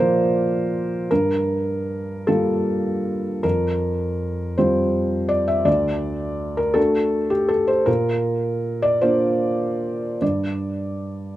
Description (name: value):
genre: neoclassical minimalist piano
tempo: 53 BPM (dotted quarters)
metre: 6/8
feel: uneven beats, rubato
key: unclear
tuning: A4 = 441 Hz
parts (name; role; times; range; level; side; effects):
- felt-muted upright piano; solo; 0.0-11.4 s; D2 to E5; -19 LUFS; equal; none
room: light reverb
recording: recorded outdoors, with no room sound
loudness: -19 LUFS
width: side -14 dB against mid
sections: 0.0-11.4 A section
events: none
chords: 0.0 Bb; 1.1 Gm7; 3.4 Fsus2; 5.7 D; 7.9 Bb; 10.2 G5